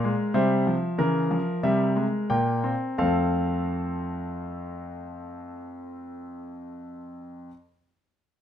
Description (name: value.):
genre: classical, baroque-style 4-part fugue for grand piano.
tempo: 43-50 BPM.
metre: 4/4.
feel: straight.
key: unclear.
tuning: A4 = 441 Hz.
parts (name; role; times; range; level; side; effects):
warm concert grand piano; solo; 0.0-7.5 s; F2 to G5; -25 LUFS; equal; none.
room: light reverb.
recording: minimal, uncompressed stereo recording.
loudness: -23 LUFS.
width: side -9 dB against mid.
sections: 0.0-3.0 A section; 3.0-8.4 B section.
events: slowing down 0.0-3.0.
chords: 0.4 C7; 3.0 F.